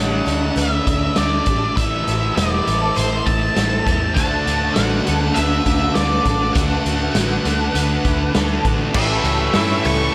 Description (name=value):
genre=rock, shoegaze and dream pop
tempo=100 BPM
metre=4/4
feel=straight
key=unclear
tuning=A4 = 440 Hz
part: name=octave-fuzz lead guitar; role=melody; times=0.0-10.1 s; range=C5 to C#6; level=-25 LUFS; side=equal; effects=distortion, slapback echo
part: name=glassy FM pad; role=sustained chords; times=0.0-10.1 s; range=A4 to E6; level=-32 LUFS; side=equal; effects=ensemble chorus, built-in reverb
part: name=picked twelve-string acoustic guitar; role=arpeggios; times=0.0-10.1 s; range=F#4 to C5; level=-31 LUFS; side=equal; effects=ensemble chorus, slapback echo
part: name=electric guitar through a small old amp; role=riff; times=0.0-10.1 s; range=A2 to F#4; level=-28 LUFS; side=equal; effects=reverse reverb
part: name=thick fuzz guitar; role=riff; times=0.0-10.1 s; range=A2 to D4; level=-27 LUFS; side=equal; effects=distortion, analog chorus
part: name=vintage muted picked electric bass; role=bass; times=0.0-10.1 s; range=E1 to G2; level=-25 LUFS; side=equal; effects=none
part: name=raw garage drum kit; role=drums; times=0.3-10.0 s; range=crash cymbal, hi-hat, kick drum, snare drum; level=-24 LUFS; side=equal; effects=none
part: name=overdriven electric guitar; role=riff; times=4.2-10.1 s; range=A2 to D4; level=-28 LUFS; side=equal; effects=none
room=light reverb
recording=none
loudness=-18 LUFS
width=mono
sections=0.0-8.9 A section; 8.9-10.1 B section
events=none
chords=0.0 Dsus2; 1.8 Am; 4.2 D6; 8.9 A7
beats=0.57 1.17 | 1.77 2.37 2.97 3.56 | 4.16 4.76 5.36 5.96 | 6.55 7.15 7.75 8.34 | 8.94 9.54 10.14